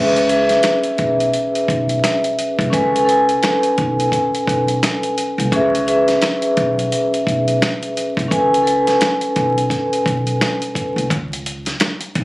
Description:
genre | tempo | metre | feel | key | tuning
hip hop, boom-bap hip-hop | 86 BPM | 4/4 | swing 60% on 16ths | unclear | A4 = 442 Hz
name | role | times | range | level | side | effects
vibraphone with soft mallets | accompaniment | 0.0-11.1 s | C#4 to G#5 | -16 LUFS | equal | cassette tape
upright bass | bass | 0.0-12.2 s | B1 to C#2 | -23 LUFS | equal | none
dusty soul sampler-style drum kit | drums | 0.2-12.2 s | hi-hat, kick drum, snare drum | -21 LUFS | equal | none
room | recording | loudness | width
light reverb | recorded on a phone in the room, club reverb, vinyl crackle, compression | -15 LUFS | side -19 dB against mid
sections
0.0-12.2 A section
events
break 11.1-12.2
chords
0.0 C#m7; 2.7 Amaj7; 5.5 C#m7; 8.3 Amaj7; 11.1 N.C.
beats
0.64 1.34 2.03 | 2.73 3.43 4.13 4.82 | 5.52 6.22 6.92 7.62 | 8.31 9.01 9.71 10.41 | 11.10 11.80

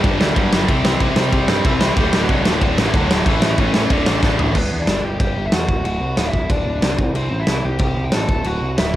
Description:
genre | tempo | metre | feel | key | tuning
punk rock | 185 BPM | 4/4 | straight | D mixolydian | A4 = 439 Hz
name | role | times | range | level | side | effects
dark smooth lead guitar | melody | 0.0-9.0 s | E3 to A5 | -24 LUFS | left 1 dB | overdrive, cassette tape, analog delay
distorted electric guitar | riff | 0.0-4.5 s | D2 to C4 | -23 LUFS | left 8 dB | overdrive
heavy high-gain guitar | riff | 0.0-4.6 s | D2 to C4 | -27 LUFS | left 1 dB | none
tight distorted guitar | riff | 0.0-4.6 s | D2 to C4 | -23 LUFS | right 8 dB | distortion
growling picked electric bass | bass | 0.0-9.0 s | D1 to C3 | -22 LUFS | equal | overdrive
big rock drum kit | drums | 0.0-9.0 s | crash cymbal, kick drum, snare drum, toms | -18 LUFS | equal | cassette tape
room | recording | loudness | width
small room ambience | home recording on cassette | -15 LUFS | side -14 dB against mid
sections
0.0-4.6 A section; 4.6-9.0 B section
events
drum fill 4.2-4.6; half time 4.6-9.0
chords
0.0 G5; 0.7 C; 2.0 D; 3.3 A; 3.9 D5; 4.6 G; 5.7 D; 7.0 C; 8.3 D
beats
0.04 0.36 | 0.69 1.01 1.33 1.65 | 1.97 2.30 2.62 2.94 | 3.26 3.59 3.91 4.23 | 4.56 4.88 5.20 5.53 | 5.85 6.18 6.50 6.83 | 7.15 7.48 7.80 8.13 | 8.45 8.78

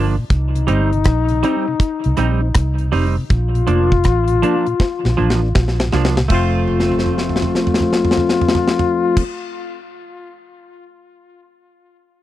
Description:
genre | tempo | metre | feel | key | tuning
roots reggae | 80 BPM | 4/4 | swing 64% on 16ths | F mixolydian | A4 = 441 Hz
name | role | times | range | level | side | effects
mellow tonewheel organ | accompaniment | 0.0-9.2 s | Bb2 to Eb4 | -23 LUFS | left 2 dB | slow rotary speaker
semi-hollow electric guitar | accompaniment | 0.0-9.8 s | F3 to F4 | -23 LUFS | right 6 dB | analog chorus, tape echo
vintage muted fingered electric bass | bass | 0.0-9.2 s | F1 to C2 | -18 LUFS | equal | none
warm trombone | second line | 0.3-9.2 s | Eb4 to F4 | -21 LUFS | left 6 dB | tape echo
deep reggae drum kit | drums | 0.3-10.8 s | crash cymbal, hi-hat, kick drum, rim click, snare drum, toms | -18 LUFS | equal | none
room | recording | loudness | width
small room reverb | dry, close 1970s-style studio recording | -14 LUFS | side -14 dB against mid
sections
0.0-6.3 A section; 6.3-9.3 B section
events
drum fill 4.8-6.3, 6.7-9.1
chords
0.3 Cm; 3.3 Bb; 6.3 F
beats
| 0.30 1.05 1.80 2.55 | 3.30 4.05 4.80 5.55 | 6.30 7.05 7.80 8.55

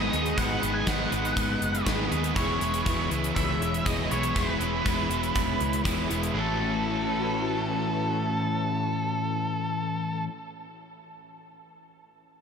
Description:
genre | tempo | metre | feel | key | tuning
rock, shoegaze and dream pop | 120 BPM | 4/4 | straight | A lydian | A4 = 440 Hz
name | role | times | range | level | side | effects
octave-fuzz lead guitar | melody | 0.0-10.2 s | A4 to G#5 | -32 LUFS | equal | distortion, digital delay
string machine, violas | sustained chords | 0.0-10.3 s | A3 to B5 | -36 LUFS | left 2 dB | phaser, ensemble chorus
biting overdriven guitar | riff | 0.0-10.3 s | G#2 to A4 | -31 LUFS | right 11 dB | reverse reverb
overdriven semi-hollow guitar | riff | 0.0-10.3 s | G#2 to E4 | -31 LUFS | left 8 dB | wide subtle chorus
vintage muted fingered electric bass | bass | 0.0-10.2 s | E1 to D#2 | -33 LUFS | equal | none
gated 80s drum kit | drums | 0.1-6.3 s | hi-hat, kick drum, snare drum | -30 LUFS | equal | none
room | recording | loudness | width
light reverb, small room ambience | none | -24 LUFS | side -6 dB against mid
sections
0.0-6.3 A section; 6.3-10.3 B section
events
none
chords
0.0 G#m7; 2.4 E6; 6.3 A6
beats
| 0.37 0.87 1.36 1.86 | 2.36 2.86 3.35 3.85 | 4.35 4.85 5.35 5.84 | 6.34 6.84 7.34 7.84 | 8.34 8.84 9.33 9.83

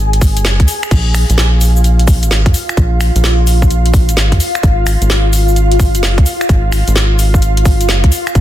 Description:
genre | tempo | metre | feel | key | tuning
UK garage, two-step garage | 129 BPM | 4/4 | swing 65% on 16ths | unclear | A4 = 440 Hz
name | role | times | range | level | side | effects
ethereal airy pad | sustained chords | 0.0-8.4 s | F4 to Ab5 | -19 LUFS | equal | ensemble chorus, built-in reverb, phaser, sidechain pumping
rubbery square bass | bass | 0.0-8.4 s | Gb1 to F2 | -11 LUFS | equal | none
garage drum kit | drums | 0.1-8.4 s | crash cymbal, finger snaps, hi-hat, shaker, snare drum | -18 LUFS | left 1 dB | studio reverb
electronic kick drum | drums | 0.2-8.4 s | none | -10 LUFS | equal | studio reverb
room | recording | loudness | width
digital ambience | dense, heavily limited modern master | -9 LUFS | side -13 dB against mid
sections
0.0-8.4 A section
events
none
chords
0.0 Ab5; 0.9 Bb5; 4.6 Ab5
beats
0.45 | 0.91 1.38 1.84 2.31 | 2.77 3.24 3.70 4.17 | 4.63 5.10 5.56 6.03 | 6.49 6.96 7.42 7.89 | 8.35

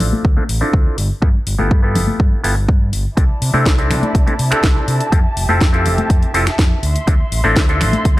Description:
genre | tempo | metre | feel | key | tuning
filtered disco house | 123 BPM | 4/4 | straight | D dorian | A4 = 440 Hz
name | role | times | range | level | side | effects
clav | accompaniment | 0.0-8.2 s | B3 to A4 | -20 LUFS | equal | phaser, sidechain pumping, low-pass filter
overdriven fingered electric bass | bass | 0.0-8.2 s | F1 to C3 | -19 LUFS | equal | sidechain pumping, low-pass filter
house drum kit | drums | 0.0-8.2 s | finger snaps, hi-hat, snare drum | -23 LUFS | equal | overdrive, sidechain pumping on hats
congas and tambourine | percussion | 0.0-8.2 s | none | -22 LUFS | left 2 dB | sidechain pumping on perc, low-pass filter on perc
electronic kick drum | drums | 0.2-8.2 s | none | -14 LUFS | equal | overdrive
rich chamber violin section | sustained chords | 3.2-8.2 s | E4 to C6 | -24 LUFS | right 1 dB | vintage 12-bit sampler grit, sidechain pumping, low-pass filter
room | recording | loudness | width
digital ambience | dry, gritty hardware recording | -13 LUFS | side -17 dB against mid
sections
0.0-8.2 A section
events
filter sweep 0.0-8.2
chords
0.0 Dm9; 1.0 G13; 3.2 C69; 5.1 Fmaj9; 6.8 Dm9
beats
0.25 0.73 | 1.22 1.71 2.20 2.69 | 3.17 3.66 4.15 4.64 | 5.13 5.61 6.10 6.59 | 7.08 7.57 8.05

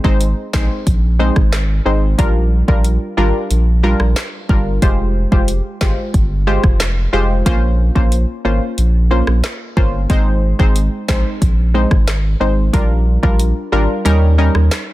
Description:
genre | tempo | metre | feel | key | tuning
dancehall | 91 BPM | 4/4 | straight | unclear | A4 = 440 Hz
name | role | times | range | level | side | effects
analog pluck | accompaniment | 0.0-14.6 s | G3 to C5 | -19 LUFS | equal | chorus
saturated sub bass | bass | 0.0-14.7 s | F1 to Eb2 | -15 LUFS | equal | none
afro-pop drum kit | drums | 0.0-14.9 s | handclaps, hi-hat, kick drum, rim click, snare drum | -16 LUFS | equal | none
room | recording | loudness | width
little or no reverb | dense, heavily limited modern master | -12 LUFS | side -17 dB against mid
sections
0.0-14.9 A section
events
kick muted 14.1-14.9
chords
0.0 Ab; 2.2 Bb6; 4.8 Fmadd9; 7.5 Bbmadd9; 10.1 Ab; 12.7 Bb6; 14.1 Eb7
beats
0.21 0.87 1.53 | 2.19 2.85 3.50 4.16 | 4.82 5.48 6.14 6.80 | 7.46 8.12 8.78 9.44 | 10.10 10.76 11.42 12.08 | 12.73 13.39 14.05 14.71

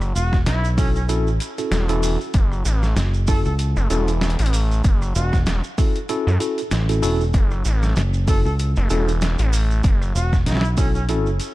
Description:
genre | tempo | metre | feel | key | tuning
glitch hop | 96 BPM | 4/4 | swing 56% on 16ths | F# minor pentatonic | A4 = 435 Hz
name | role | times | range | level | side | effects
gritty driven synth bass | bass | 0.0-10.1 s | E1 to F#2 | -19 LUFS | equal | tube saturation
boom bap sampler-style drum kit | drums | 0.0-11.5 s | hi-hat, rim click, snare drum | -28 LUFS | equal | none
shekere | percussion | 0.0-11.5 s | none | -35 LUFS | right 5 dB | none
mellow trumpet | melody | 0.2-11.0 s | C#4 to A4 | -31 LUFS | equal | ping-pong delay
fingered electric bass | bass | 0.2-11.4 s | E1 to C#2 | -20 LUFS | equal | none
electronic kick drum | drums | 0.3-10.9 s | none | -19 LUFS | equal | overdrive
mellow tine electric piano | stabs | 0.8-11.3 s | C#4 to A4 | -26 LUFS | equal | medium stereo tremolo, sidechain pumping, ping-pong delay
room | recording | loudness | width
little or no reverb | dark, warm production | -17 LUFS | side -18 dB against mid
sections
0.0-11.5 A section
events
none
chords
0.0 F#m7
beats
0.47 1.09 1.72 | 2.34 2.97 3.59 4.22 | 4.84 5.47 6.09 6.72 | 7.34 7.97 8.59 9.22 | 9.84 10.47 11.09

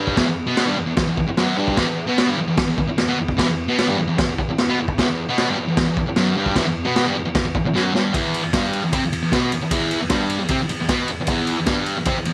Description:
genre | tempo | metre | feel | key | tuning
garage rock duo or trio | 152 BPM | 4/4 | straight | E minor | A4 = 441 Hz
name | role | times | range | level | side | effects
thick fuzz guitar | riff | 0.0-12.3 s | E2 to C4 | -23 LUFS | equal | distortion
raw garage drum kit | drums | 0.1-12.3 s | crash cymbal, kick drum, ride cymbal, snare drum | -24 LUFS | equal | none
room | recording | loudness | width
light reverb, small room ambience | none | -20 LUFS | mono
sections
0.0-8.1 A section; 8.1-12.3 B section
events
drum fill 7.7-8.1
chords
0.0 Em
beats
| 0.18 0.58 0.98 1.38 | 1.78 2.18 2.58 2.98 | 3.38 3.78 4.18 4.58 | 4.97 5.37 5.77 6.16 | 6.56 6.96 7.35 7.74 | 8.14 8.53 8.93 9.32 | 9.71 10.11 10.50 10.89 | 11.29 11.68 12.07

